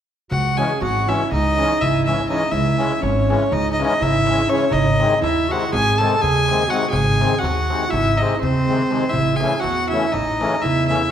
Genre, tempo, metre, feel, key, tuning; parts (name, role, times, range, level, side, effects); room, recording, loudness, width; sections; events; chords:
balkan folk, Balkan wedding band; 245 BPM (eighths); 9/8; straight; C# harmonic minor; A4 = 440 Hz
rich violin; melody; 0.3-11.1 s; B#4 to A5; -21 LUFS; left 2 dB
warm clarinet; second line; 0.3-11.1 s; B#3 to A4; -23 LUFS; right 4 dB
upright bass; bass; 0.3-11.1 s; G#1 to E2; -24 LUFS; equal
darbuka; percussion; 0.3-11.0 s; -25 LUFS; right 2 dB
musette accordion; accompaniment; 0.6-11.0 s; B#2 to C#4; -24 LUFS; left 4 dB
wet concert hall reverb, RT60 2.0 s; minimal, uncompressed stereo recording; -16 LUFS; side -9 dB against mid
0.3-11.1 A section
0.3 C#m; 4.7 G#; 9.1 A